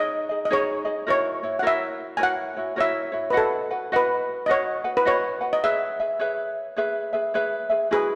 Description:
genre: Hawaiian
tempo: 105 BPM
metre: 4/4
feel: swing 63% on 8ths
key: E major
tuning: A4 = 440 Hz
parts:
  - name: steel pan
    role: melody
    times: 0.0-8.2 s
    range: G#4 to G#5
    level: -26 LUFS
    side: equal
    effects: none
  - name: ukulele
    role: accompaniment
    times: 0.0-8.2 s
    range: D#4 to F#5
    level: -28 LUFS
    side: equal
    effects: none
room: wet concert hall reverb, RT60 2.0 s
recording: none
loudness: -24 LUFS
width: mono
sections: 0.0-7.9 A section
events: none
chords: 0.0 C#sus2; 1.1 F#7; 3.3 B; 5.6 E6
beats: 0.50 | 1.07 1.64 2.21 2.78 | 3.35 3.92 4.49 5.05 | 5.62 6.20 6.77 7.34 | 7.91

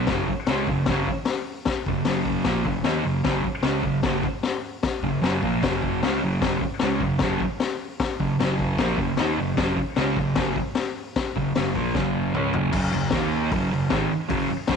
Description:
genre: garage rock duo or trio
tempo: 152 BPM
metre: 4/4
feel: straight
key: F# major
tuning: A4 = 441 Hz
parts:
  - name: fuzz guitar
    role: riff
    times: 0.0-14.8 s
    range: F#2 to F#4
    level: -24 LUFS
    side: right 1 dB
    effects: distortion
  - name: fuzz fingered electric bass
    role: bass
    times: 0.0-14.8 s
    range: F#1 to F#2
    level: -33 LUFS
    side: right 2 dB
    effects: none
  - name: raw garage drum kit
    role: drums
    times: 0.1-14.8 s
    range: crash cymbal, hi-hat, kick drum, snare drum, toms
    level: -26 LUFS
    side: left 4 dB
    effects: vintage 12-bit sampler grit
room: light reverb, studio reverb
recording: 1960s-style stereo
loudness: -22 LUFS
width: side -6 dB against mid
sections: 0.1-12.7 A section; 12.7-14.8 B section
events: drum fill 11.9-12.7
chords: 0.1 F#; 12.7 F#5; 13.1 D#5; 13.5 F#5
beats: | 0.07 0.47 0.86 1.26 | 1.66 2.05 2.45 2.84 | 3.24 3.64 4.03 4.43 | 4.83 5.22 5.62 6.01 | 6.41 6.80 7.20 7.60 | 7.99 8.39 8.78 9.18 | 9.57 9.97 10.37 10.76 | 11.15 11.55 11.94 12.34 | 12.73 13.13 13.52 13.91 | 14.30 14.70

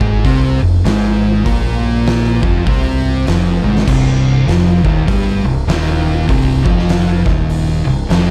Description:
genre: stoner and doom metal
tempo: 99 BPM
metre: 4/4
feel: swing 61% on 8ths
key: C minor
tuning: A4 = 442 Hz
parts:
  - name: thick fuzz guitar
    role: riff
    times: 0.0-8.3 s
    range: C2 to C4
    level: -19 LUFS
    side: equal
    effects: distortion
  - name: thick fuzz guitar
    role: riff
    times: 0.0-8.3 s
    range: C2 to C4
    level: -20 LUFS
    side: equal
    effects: distortion
  - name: growling fingered electric bass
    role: bass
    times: 0.0-8.3 s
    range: C1 to C2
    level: -20 LUFS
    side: equal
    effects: overdrive
  - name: oversized low-tuned drum kit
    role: drums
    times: 0.0-8.3 s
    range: crash cymbal, hi-hat, kick drum, snare drum, toms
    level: -20 LUFS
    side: equal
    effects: none
room: light reverb, small room ambience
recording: dark, warm production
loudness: -14 LUFS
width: mono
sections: 0.0-3.9 A section; 3.9-8.3 A section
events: drum fill 3.6-3.9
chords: 0.0 F5; 3.9 Cm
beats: 0.25 0.85 | 1.46 2.06 2.67 3.27 | 3.88 4.48 5.08 5.68 | 6.29 6.89 7.49 8.10

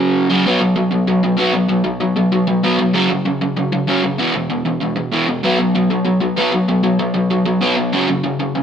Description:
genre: punk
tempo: 193 BPM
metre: 4/4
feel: straight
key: unclear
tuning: A4 = 440 Hz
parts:
  - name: crunchy overdriven guitar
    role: solo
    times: 0.0-8.6 s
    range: E2 to B3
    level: -14 LUFS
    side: equal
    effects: none
room: moderate stone room reverb, RT60 1.2 s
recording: band playing live in one room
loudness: -14 LUFS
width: side -8 dB against mid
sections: 0.5-8.6 A section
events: none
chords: 0.5 B5; 2.9 F#5; 4.2 E5; 5.4 B5; 7.9 F#5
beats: 0.14 | 0.45 0.77 1.08 1.39 | 1.70 2.01 2.32 2.64 | 2.95 3.26 3.57 3.88 | 4.19 4.50 4.82 5.13 | 5.44 5.75 6.06 6.37 | 6.68 7.00 7.31 7.62 | 7.93 8.24 8.55

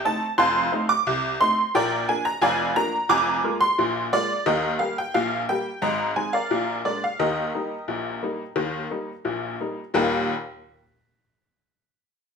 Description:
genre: ragtime piano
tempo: 88 BPM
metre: 2/4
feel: straight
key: Eb major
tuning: A4 = 438 Hz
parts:
  - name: honky-tonk upright piano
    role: solo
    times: 0.0-10.3 s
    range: F1 to D6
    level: -21 LUFS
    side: equal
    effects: none
room: wet studio reverb, RT60 0.8 s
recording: band playing live in one room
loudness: -21 LUFS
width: side -6 dB against mid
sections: 0.0-9.9 A section; 9.9-11.3 B section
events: none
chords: 0.0 F7; 1.7 Bb; 3.1 Bb5/F; 4.5 Eb; 5.8 Ab; 6.5 Bb7; 7.2 Eb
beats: | 0.39 1.07 | 1.75 2.42 | 3.10 3.78 | 4.46 5.14 | 5.82 6.50 | 7.19 7.88 | 8.56 9.25 | 9.94

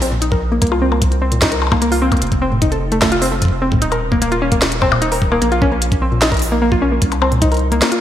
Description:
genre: IDM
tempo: 150 BPM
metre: 4/4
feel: straight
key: unclear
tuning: A4 = 445 Hz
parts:
  - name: warbly dusty pluck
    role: arpeggios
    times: 0.0-8.0 s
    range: A2 to Bb4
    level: -17 LUFS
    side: left 1 dB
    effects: chorus, digital delay
  - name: round analog bass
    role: bass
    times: 0.0-7.8 s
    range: Eb1 to C2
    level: -19 LUFS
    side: equal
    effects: none
  - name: glitchy drum kit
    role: drums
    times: 0.0-8.0 s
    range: hi-hat, percussion blips, snare drum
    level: -20 LUFS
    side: left 2 dB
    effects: gated reverb
  - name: electronic kick drum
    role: drums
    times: 0.3-7.5 s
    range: none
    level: -18 LUFS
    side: equal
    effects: none
room: moderate lush hall reverb, RT60 1.9 s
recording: bright 1980s-style digital production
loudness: -13 LUFS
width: side -11 dB against mid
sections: 0.0-8.0 A section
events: none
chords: 0.0 N.C.; 0.6 C7(no3); 2.2 F; 3.8 Eb5; 5.4 N.C.; 7.0 C7(no3)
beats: 0.22 | 0.62 1.02 1.42 1.82 | 2.22 2.62 3.02 3.42 | 3.82 4.22 4.62 5.02 | 5.42 5.82 6.22 6.62 | 7.02 7.42 7.82

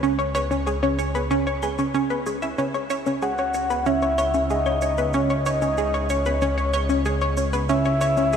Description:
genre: ambient, sequencer-driven space music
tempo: 94 BPM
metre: 4/4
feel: straight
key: C# minor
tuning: A4 = 440 Hz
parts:
  - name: analog pluck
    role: riff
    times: 0.0-8.4 s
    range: C#4 to E5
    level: -23 LUFS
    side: right 1 dB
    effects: chorus, tape echo
  - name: fat analog bass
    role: bass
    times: 0.0-8.4 s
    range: C#2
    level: -27 LUFS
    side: equal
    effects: none
  - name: shaker and claves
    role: percussion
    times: 0.0-8.4 s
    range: none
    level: -41 LUFS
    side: right 1 dB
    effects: tape echo
  - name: soft octave-layered synth lead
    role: melody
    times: 3.2-8.4 s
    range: C#5 to F#5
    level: -24 LUFS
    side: left 2 dB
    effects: chorus, tape echo
room: wet huge ambient reverb, RT60 7.7 s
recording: dreamy mix soaked in reverb, cassette tape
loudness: -20 LUFS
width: side -7 dB against mid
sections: 0.0-8.4 A section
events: fade-in on drum 0.0-8.4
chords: 0.0 C#m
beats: | 0.03 0.67 1.31 1.95 | 2.58 3.22 3.86 4.50 | 5.14 5.78 6.41 7.05 | 7.69 8.33

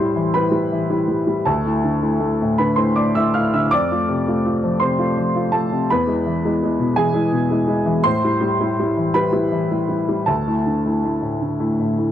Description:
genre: neoclassical minimalist piano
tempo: 54 BPM (dotted quarters)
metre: 6/8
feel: rubato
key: A minor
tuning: A4 = 441 Hz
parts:
  - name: warm upright piano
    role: solo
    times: 0.0-12.1 s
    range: D2 to F6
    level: -17 LUFS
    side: equal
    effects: none
room: little or no reverb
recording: dry, close 1970s-style studio recording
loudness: -17 LUFS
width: side -10 dB against mid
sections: 0.0-12.1 A section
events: none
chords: 0.0 Am7 (rootless); 1.4 Dsus2; 3.7 F; 5.9 E; 8.1 Am7 (rootless); 10.3 Dsus2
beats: 0.34 | 1.44 2.57 | 3.69 4.79 | 5.88 6.97 | 8.05 9.15 | 10.28 11.42

